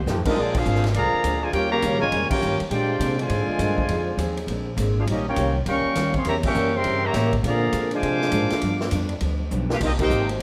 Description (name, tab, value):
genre	jazz, big band swing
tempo	203 BPM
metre	4/4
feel	swing 63% on 8ths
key	unclear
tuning	A4 = 440 Hz
part	upright bass	bass	0.0-10.4 s	G1 to D3	-28 LUFS	equal	none
part	picked steel-string acoustic guitar	accompaniment	0.1-10.4 s	G2 to Ab4	-31 LUFS	equal	none
part	swinging big-band drum kit	drums	0.1-10.4 s	crash cymbal, hi-hat, kick drum, ride cymbal, snare drum	-32 LUFS	equal	none
part	clear trumpet section	melody	0.3-10.3 s	C4 to D6	-28 LUFS	equal	none
part	mellow trombone section	second line	0.3-10.4 s	Bb2 to G4	-28 LUFS	equal	none
room	moderate recital hall reverb, RT60 1.6 s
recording	none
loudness	-23 LUFS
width	mono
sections	0.4-10.4 A section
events	band accent 0.5, 2.3, 6.4, 10.0; drum fill 9.5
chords	0.4 Bb9; 1.5 Eb9; 2.7 Bb9; 3.9 Fm7; 4.5 Bb9; 5.1 Eb9; 6.3 Edim7; 7.4 Bb9; 8.6 G7; 9.8 Cm7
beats	0.07 | 0.36 0.66 0.95 1.25 | 1.54 1.83 2.13 2.42 | 2.72 3.01 3.31 3.60 | 3.90 4.19 4.49 4.78 | 5.08 5.37 5.67 5.96 | 6.26 6.55 6.85 7.14 | 7.44 7.74 8.03 8.33 | 8.62 8.92 9.21 9.51 | 9.80 10.10 10.40